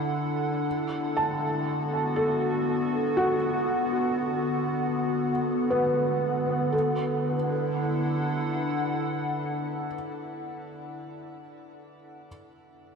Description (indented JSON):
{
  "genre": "ambient",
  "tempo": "60 BPM",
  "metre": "3/4",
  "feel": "straight",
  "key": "D major",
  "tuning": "A4 = 440 Hz",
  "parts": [
    { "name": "evolving wavetable pad", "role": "sustained chords", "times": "0.0-10.6 s", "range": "D3 to F#5", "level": "-28 LUFS", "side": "equal", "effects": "chorus, built-in reverb, shimmer reverb" },
    { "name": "felt-muted upright piano", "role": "arpeggios", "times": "0.0-12.3 s", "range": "B3 to A5", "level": "-28 LUFS", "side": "equal", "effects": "diffuse ambient delay, shimmer reverb" }
  ],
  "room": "wet cathedral reverb, RT60 6.5 s",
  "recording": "none",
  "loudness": "-25 LUFS",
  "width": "side -5 dB against mid",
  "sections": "0.0-6.7 A section; 6.7-9.8 B section",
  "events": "none",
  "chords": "0.0 Dadd9"
}